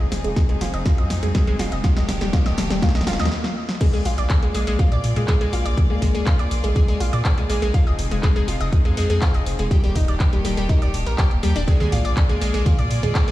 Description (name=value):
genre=progressive house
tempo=122 BPM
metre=4/4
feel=straight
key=Bb mixolydian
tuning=A4 = 440 Hz
part: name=rich chamber string section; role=sustained chords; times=0.0-13.3 s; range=Eb3 to D5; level=-31 LUFS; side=left 1 dB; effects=sidechain pumping
part: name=analog pluck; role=arpeggios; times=0.0-13.3 s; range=G3 to Eb5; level=-26 LUFS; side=left 1 dB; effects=chorus, sidechain pumping, tape echo
part: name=saturated sub bass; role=bass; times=0.0-13.3 s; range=Eb1 to Bb2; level=-23 LUFS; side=equal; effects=sidechain pumping
part: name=riser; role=sound effects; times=0.0-3.3 s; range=none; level=-31 LUFS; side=right 1 dB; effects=none
part: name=house drum kit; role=drums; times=0.1-13.3 s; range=crash cymbal, handclaps, hi-hat, snare drum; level=-29 LUFS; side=equal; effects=none
part: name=electronic kick drum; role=drums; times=0.4-13.3 s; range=none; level=-18 LUFS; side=equal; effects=none
part: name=congas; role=percussion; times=11.8-13.1 s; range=none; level=-26 LUFS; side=right 1 dB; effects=sidechain pumping on perc
room=little or no reverb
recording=played on a big sound system in a bare room, large studio reverb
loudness=-17 LUFS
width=side -15 dB against mid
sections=0.0-3.8 A section; 3.8-13.3 B section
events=build-up 0.0-3.8; drum fill 0.0-3.3, 3.3-3.8; riser 0.0-3.3; filter sweep on synth pluck 0.0-3.8; stop 3.3-3.8; drop 3.8-13.3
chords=0.0 Fm7; 1.8 Ebmaj7; 3.8 Bb7; 7.7 Fm7; 9.7 Ebmaj7; 11.7 Bb7